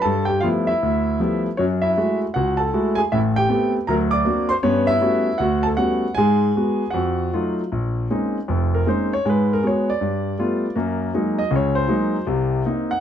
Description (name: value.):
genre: solo jazz.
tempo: 157 BPM.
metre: 4/4.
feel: swing 64% on 8ths, rubato.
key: Bb minor from 7.7 s.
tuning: A4 = 440 Hz.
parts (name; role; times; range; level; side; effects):
clear grand piano; solo; 0.0-13.0 s; F1 to D6; -18 LUFS; equal; none.
room: moderate studio reverb, RT60 0.8 s.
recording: none.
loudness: -18 LUFS.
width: side -9 dB against mid.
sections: 0.0-7.7 A section; 7.7-13.0 B section.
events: grand piano solo 7.7-13.0.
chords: 0.0 G13; 1.6 F#m9; 3.1 Am9; 3.9 Daug7; 4.6 Gmaj9#11; 6.2 G#m7; 6.9 F7b9; 7.7 Bbm11; 9.3 Abm7; 10.0 G9; 10.8 Gb69; 12.3 Cm7b5.